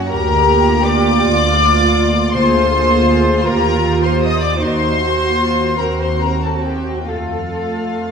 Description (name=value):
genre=classical, slow romantic movement for string orchestra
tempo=46-55 BPM (dotted quarters)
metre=6/8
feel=rubato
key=Bb major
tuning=A4 = 445 Hz
part: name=warm studio violin section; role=melody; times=0.0-8.1 s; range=F5 to Eb6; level=-19 LUFS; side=left 5 dB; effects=none
part: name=rich studio violin section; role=second line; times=0.0-8.1 s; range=F4 to Eb5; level=-19 LUFS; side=left 3 dB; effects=none
part: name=rich studio viola section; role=accompaniment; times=0.0-8.1 s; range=A3 to Ab4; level=-20 LUFS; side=right 2 dB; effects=none
part: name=dark studio cello section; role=bass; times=0.0-8.1 s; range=Eb4 to A4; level=-22 LUFS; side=right 4 dB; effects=none
part: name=rich studio double bass section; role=bass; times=0.1-8.1 s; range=D2 to F2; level=-19 LUFS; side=right 2 dB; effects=none
room=wet scoring stage reverb, RT60 1.6 s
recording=dark, warm production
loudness=-13 LUFS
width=side -6 dB against mid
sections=0.0-8.1 A section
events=none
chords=0.1 Bb/D; 2.4 Bb7/D; 3.5 Eb; 4.6 Ebm; 5.8 Cdim/Eb; 7.1 F